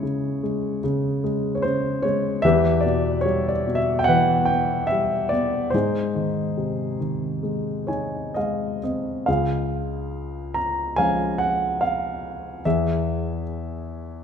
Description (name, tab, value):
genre	classical, lyrical solo piano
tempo	62-75 BPM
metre	4/4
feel	rubato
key	Db major from 9.3 s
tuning	A4 = 439 Hz
part	dark grand piano	solo	0.0-14.2 s	Db2 to Bb5	-21 LUFS	equal	none
room	wet recital hall reverb, RT60 1.7 s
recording	recorded in a church or concert hall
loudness	-21 LUFS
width	side -7 dB against mid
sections	0.0-9.3 A section; 9.3-14.2 B section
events	grand piano fill 7.4-9.3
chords	0.0 Dbm; 2.4 Em; 5.7 Ab; 9.3 Db; 12.7 E